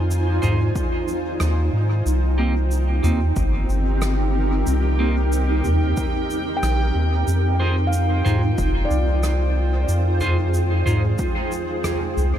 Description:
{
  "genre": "ambient dub",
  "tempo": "92 BPM",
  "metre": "4/4",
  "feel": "swing 60% on 16ths",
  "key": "unclear",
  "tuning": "A4 = 443 Hz",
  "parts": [
    { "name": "granular cloud pad", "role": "sustained chords", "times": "0.0-12.4 s", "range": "C4 to Ab5", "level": "-25 LUFS", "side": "right 1 dB", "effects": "built-in reverb" },
    { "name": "handpan", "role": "arpeggios", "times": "0.0-11.9 s", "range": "F4 to G5", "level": "-32 LUFS", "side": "left 1 dB", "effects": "dub echo" },
    { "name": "soft dub sub bass", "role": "bass", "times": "0.0-12.4 s", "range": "F1 to Ab2", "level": "-19 LUFS", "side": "equal", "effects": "none" },
    { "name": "soft-mallet drum kit", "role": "drums", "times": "0.1-12.3 s", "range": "rim click, shaker, toms", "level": "-30 LUFS", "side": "equal", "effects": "dub echo" },
    { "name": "clean electric guitar", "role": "stabs", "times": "0.4-11.0 s", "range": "Bb3 to C5", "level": "-30 LUFS", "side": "right 2 dB", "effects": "harmonic tremolo, dub echo" },
    { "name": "electronic kick drum", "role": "drums", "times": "0.8-11.3 s", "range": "none", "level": "-26 LUFS", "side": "equal", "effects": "overdrive" },
    { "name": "bubbling stepped-filter texture", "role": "texture", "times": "2.3-12.4 s", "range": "G5", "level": "-33 LUFS", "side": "right 3 dB", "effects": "chorus, built-in reverb" }
  ],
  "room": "small room ambience",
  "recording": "none",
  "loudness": "-18 LUFS",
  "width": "side -10 dB against mid",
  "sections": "0.0-12.4 A section",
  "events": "none",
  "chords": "0.0 Fm7; 2.1 Cm7; 7.3 Fm7"
}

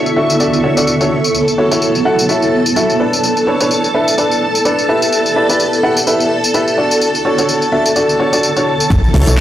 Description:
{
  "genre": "piano house",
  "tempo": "127 BPM",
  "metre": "4/4",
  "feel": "swing 57% on 16ths",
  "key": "D major",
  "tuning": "A4 = 440 Hz",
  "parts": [
    { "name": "string machine, violins", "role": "sustained chords", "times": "0.0-9.4 s", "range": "A4 to C#6", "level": "-17 LUFS", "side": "equal", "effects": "ensemble chorus, sidechain pumping" },
    { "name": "clear upright piano", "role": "riff", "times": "0.0-9.4 s", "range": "D4 to F#5", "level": "-15 LUFS", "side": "equal", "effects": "sidechain pumping, analog delay" },
    { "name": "granular cloud pad", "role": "texture", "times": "0.0-8.9 s", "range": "D3 to D5", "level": "-18 LUFS", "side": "right 1 dB", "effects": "built-in reverb, sidechain pumping" },
    { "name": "house drum kit", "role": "drums", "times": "0.1-9.4 s", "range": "handclaps, hi-hat, tambourine", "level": "-19 LUFS", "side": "left 1 dB", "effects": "low-pass filter on perc, small room reverb, low-pass filter on hats, low-pass filter on snare" },
    { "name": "solid FM bass", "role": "bass", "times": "8.9-9.4 s", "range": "F#1 to C#2", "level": "-11 LUFS", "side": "equal", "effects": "sidechain pumping" },
    { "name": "electronic kick drum", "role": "drums", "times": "8.9-9.4 s", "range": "none", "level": "-15 LUFS", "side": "equal", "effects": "small room reverb" },
    { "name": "impact", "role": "sound effects", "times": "8.9-9.4 s", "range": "none", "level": "-19 LUFS", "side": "equal", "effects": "none" }
  ],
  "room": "light reverb, digital ambience",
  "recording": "dry, gritty hardware recording, transformer saturation",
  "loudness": "-11 LUFS",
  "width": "side -12 dB against mid",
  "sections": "0.0-8.9 A section",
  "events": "impact 8.9-9.4",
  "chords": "0.0 Dmaj7; 1.3 F#m7; 3.0 Bm9; 4.9 Em7; 6.8 Dmaj7; 8.9 F#m7"
}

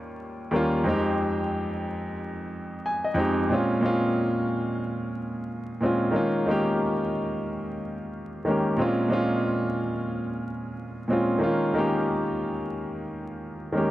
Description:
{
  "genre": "hip hop",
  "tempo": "91 BPM",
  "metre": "4/4",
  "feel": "swing 56% on 16ths",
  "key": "Bb dorian",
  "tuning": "A4 = 440 Hz",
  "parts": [
    { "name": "warm baby grand piano", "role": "solo", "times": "0.0-13.9 s", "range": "Eb2 to Ab5", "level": "-24 LUFS", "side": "equal", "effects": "cassette tape" }
  ],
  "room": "moderate plate reverb, RT60 3.7 s",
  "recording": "vinyl crackle",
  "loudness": "-24 LUFS",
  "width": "side -15 dB against mid",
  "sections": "0.0-3.5 A section; 3.5-13.9 B section",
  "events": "none",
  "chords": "0.0 Eb7; 0.9 Fm7; 3.5 Bbm9; 6.2 Eb9sus4; 8.8 Bbm9; 11.4 Eb9sus4"
}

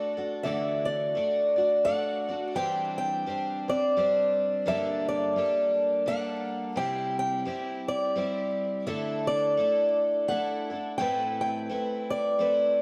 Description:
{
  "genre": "acoustic folk duo or small band",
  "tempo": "85 BPM",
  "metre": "3/4",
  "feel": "swing 59% on 8ths",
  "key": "D mixolydian",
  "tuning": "A4 = 438 Hz",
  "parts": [
    { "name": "picked acoustic archtop guitar", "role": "melody", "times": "0.0-12.8 s", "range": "D5 to G5", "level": "-28 LUFS", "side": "equal", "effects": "none" },
    { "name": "picked twelve-string acoustic guitar", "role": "accompaniment", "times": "0.0-12.8 s", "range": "G2 to D5", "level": "-35 LUFS", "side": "equal", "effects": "none" }
  ],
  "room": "wet plate reverb, RT60 3.2 s",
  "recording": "heard from further back in the room, vinyl crackle",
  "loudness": "-28 LUFS",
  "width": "mono",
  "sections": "0.4-12.8 A section",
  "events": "none",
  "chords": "0.4 Dadd9; 2.6 Cadd9/E; 4.7 Gmadd9; 6.8 C; 8.9 Dsus2; 11.0 Amadd9"
}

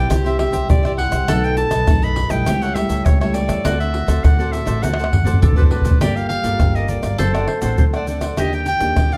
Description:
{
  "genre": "samba and choro",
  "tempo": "102 BPM",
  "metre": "4/4",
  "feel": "straight",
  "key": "G minor from 6.0 s",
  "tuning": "A4 = 440 Hz",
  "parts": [
    { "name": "bright clarinet", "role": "melody", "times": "0.0-9.2 s", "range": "A4 to B5", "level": "-26 LUFS", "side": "equal", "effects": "none" },
    { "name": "mandolin", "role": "second line", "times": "0.0-9.2 s", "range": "D4 to A4", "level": "-29 LUFS", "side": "equal", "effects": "none" },
    { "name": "cavaquinho", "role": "accompaniment", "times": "0.0-9.2 s", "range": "D4 to F#5", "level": "-34 LUFS", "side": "equal", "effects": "none" },
    { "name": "nylon-string guitar", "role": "accompaniment", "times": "0.0-9.2 s", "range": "F#2 to A4", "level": "-28 LUFS", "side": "equal", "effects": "none" },
    { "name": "upright bass", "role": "bass", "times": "0.0-9.2 s", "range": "F#1 to E2", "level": "-24 LUFS", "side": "equal", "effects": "none" },
    { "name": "egg shaker, surdo, pandeiro and tamborim", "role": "percussion", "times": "0.1-9.2 s", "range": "none", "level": "-20 LUFS", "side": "equal", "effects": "none" }
  ],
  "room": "moderate large studio reverb, RT60 0.9 s",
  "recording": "none",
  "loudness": "-17 LUFS",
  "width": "mono",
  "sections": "0.0-6.0 A section; 6.0-9.2 B section",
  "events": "drum fill 4.8-6.0",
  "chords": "0.1 C; 1.3 B7; 2.5 A7/C#; 3.6 D7; 6.0 Gm9; 7.2 D7/F#; 8.4 Ebmaj7"
}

